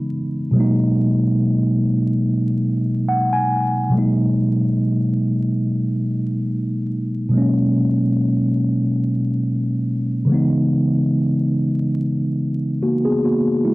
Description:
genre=hip hop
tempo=71 BPM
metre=4/4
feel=swing 58% on 16ths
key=G# minor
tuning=A4 = 440 Hz
part: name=mellow tine electric piano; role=solo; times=0.0-13.7 s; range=B2 to G#5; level=-17 LUFS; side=equal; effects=medium stereo tremolo, low-pass filter, cassette tape
room=light reverb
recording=home recording on cassette, vinyl crackle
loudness=-17 LUFS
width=side -21 dB against mid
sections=0.0-3.9 A section; 3.9-13.7 B section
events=tine electric piano fill 2.7-3.9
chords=0.0 C#m9; 0.5 G#m9; 10.3 C#m9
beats=| 0.55 1.39 2.24 3.08 | 3.93 4.78 5.62 6.46 | 7.31 8.15 9.00 9.85 | 10.69 11.54 12.38 13.22

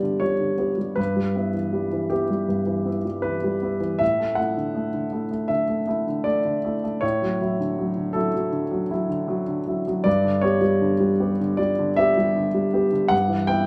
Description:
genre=neoclassical minimalist piano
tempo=79 BPM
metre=4/4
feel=rubato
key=E dorian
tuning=A4 = 439 Hz
part: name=warm grand piano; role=solo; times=0.0-13.7 s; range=G2 to G5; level=-23 LUFS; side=equal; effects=none
room=wet studio reverb, RT60 0.8 s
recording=band playing live in one room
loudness=-23 LUFS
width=mono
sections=0.0-13.7 A section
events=none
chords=0.0 G; 1.0 Em/G; 4.0 Asus4; 7.0 Dadd9/A; 10.1 G; 13.1 Em/G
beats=0.21 | 0.98 1.75 2.51 3.25 | 4.00 4.75 5.50 6.26 | 7.03 7.78 8.53 9.29 | 10.06 10.82 11.59 12.36 | 13.12

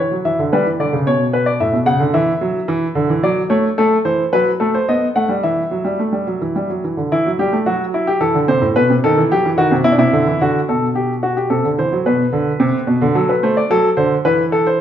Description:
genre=classical, baroque-style two-part invention for grand piano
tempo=109 BPM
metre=3/4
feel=straight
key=E minor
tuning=A4 = 440 Hz
part: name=warm baby grand piano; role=solo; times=0.0-14.8 s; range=A2 to F#5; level=-14 LUFS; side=equal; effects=none
room=wet recital hall reverb, RT60 1.4 s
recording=nothing above 10.6 kHz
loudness=-14 LUFS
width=side -10 dB against mid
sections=0.0-7.1 A section; 7.1-10.4 B section; 10.4-14.8 A section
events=none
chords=0.0 Dmaj9; 0.5 G (rootless); 1.6 F#m/A; 2.2 Dadd9; 3.2 D/F#; 3.8 F#dim; 4.9 B7; 5.4 Em; 8.2 Am; 8.8 B7; 9.9 E5/B; 10.4 Bm; 11.5 Am/C; 12.1 Bm; 13.2 F#dim; 13.7 D/F#; 14.2 C/E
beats=| 0.52 1.06 1.61 | 2.15 2.70 3.24 | 3.79 4.34 4.89 | 5.44 6.00 6.56 | 7.12 7.67 8.21 | 8.76 9.31 9.86 | 10.41 10.96 11.51 | 12.06 12.61 13.16 | 13.70 14.25 14.80

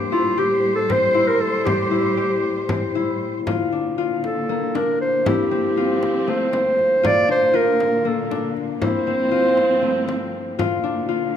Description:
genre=contemporary instrumental, chamber music in an uneven meter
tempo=236 BPM (eighths)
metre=7/8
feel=straight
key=unclear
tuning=A4 = 440 Hz
part: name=warm studio string section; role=sustained chords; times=0.0-11.4 s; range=G2 to C5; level=-26 LUFS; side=right 2 dB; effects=none
part: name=concert harp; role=arpeggios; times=0.0-11.4 s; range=A3 to G4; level=-23 LUFS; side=left 7 dB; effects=none
part: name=warm clarinet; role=melody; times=0.1-10.3 s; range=F4 to D5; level=-19 LUFS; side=right 1 dB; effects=none
part: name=frame drum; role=percussion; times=0.1-10.8 s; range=none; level=-28 LUFS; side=equal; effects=none
room=moderate recital hall reverb, RT60 1.6 s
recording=minimal, uncompressed stereo recording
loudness=-18 LUFS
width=side -9 dB against mid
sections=0.0-3.5 A section; 3.5-11.4 B section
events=none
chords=0.0 Am7; 3.5 Bbmaj7; 5.3 Fmaj9/G; 7.0 Bbmaj7; 8.8 Fmaj9/G; 10.6 Bb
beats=0.12 0.38 0.63 0.89 1.14 1.40 | 1.66 1.91 2.17 2.43 2.69 2.95 3.21 | 3.47 3.72 3.98 4.24 4.50 4.75 5.00 | 5.26 5.51 5.77 6.02 6.28 6.53 6.79 | 7.04 7.29 7.54 7.80 8.05 8.30 8.56 | 8.81 9.06 9.32 9.57 9.82 10.08 10.33 | 10.59 10.84 11.09 11.35

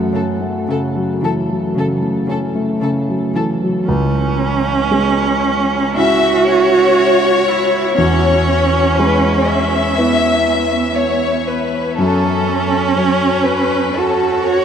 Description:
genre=neoclassical piano and strings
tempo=55-62 BPM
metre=4/4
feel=rubato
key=F# minor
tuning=A4 = 439 Hz
part: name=warm concert grand piano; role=accompaniment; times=0.0-14.6 s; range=C#2 to F#5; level=-17 LUFS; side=equal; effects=none
part: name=rich cello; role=second line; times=0.1-14.6 s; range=C#3 to F#4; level=-16 LUFS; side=right 4 dB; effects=none
part: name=rich chamber violin section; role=melody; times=0.2-14.6 s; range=A4 to E5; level=-18 LUFS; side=left 4 dB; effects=none
room=wet huge ambient reverb, RT60 7.0 s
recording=in a vast, echoing space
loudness=-13 LUFS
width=side -8 dB against mid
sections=0.0-3.9 A section; 3.9-14.6 B section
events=none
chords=0.0 F#m; 3.9 C#m; 8.0 E; 12.0 F#m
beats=0.69 1.76 2.82 | 3.87 4.90 5.96 6.97 | 7.97 8.98 9.97 10.97 | 11.97 12.95 13.97

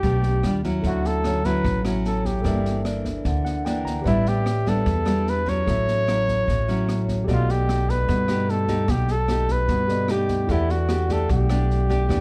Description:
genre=bossa nova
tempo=149 BPM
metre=4/4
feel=straight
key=unclear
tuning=A4 = 440 Hz
part: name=warm flugelhorn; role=melody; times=0.0-12.2 s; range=E4 to C#5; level=-28 LUFS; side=equal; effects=plate reverb
part: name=nylon-string guitar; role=accompaniment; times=0.0-12.2 s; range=G2 to G4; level=-28 LUFS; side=equal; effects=none
part: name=upright bass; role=bass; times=0.0-12.2 s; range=G1 to G2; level=-26 LUFS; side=equal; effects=none
part: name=open jazz drum kit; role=drums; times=0.0-12.2 s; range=kick drum, rim click, snare drum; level=-32 LUFS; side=equal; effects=none
part: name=barky tine electric piano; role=accompaniment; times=0.8-12.2 s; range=E4 to Bb5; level=-36 LUFS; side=equal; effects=none
room=light reverb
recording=dark, warm production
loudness=-22 LUFS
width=mono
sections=0.0-12.2 A section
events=tine electric piano fill 3.2-4.1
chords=0.4 Ebmaj9; 0.8 Dmaj9; 2.4 Gm6; 4.1 A9sus4; 5.7 A6; 7.3 B7alt; 10.5 Em11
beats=0.03 0.43 | 0.83 1.24 1.64 2.04 | 2.44 2.85 3.25 3.65 | 4.05 4.46 4.86 5.26 | 5.67 6.07 6.47 6.87 | 7.27 7.68 8.08 8.48 | 8.88 9.29 9.69 10.09 | 10.49 10.89 11.30 11.70 | 12.10

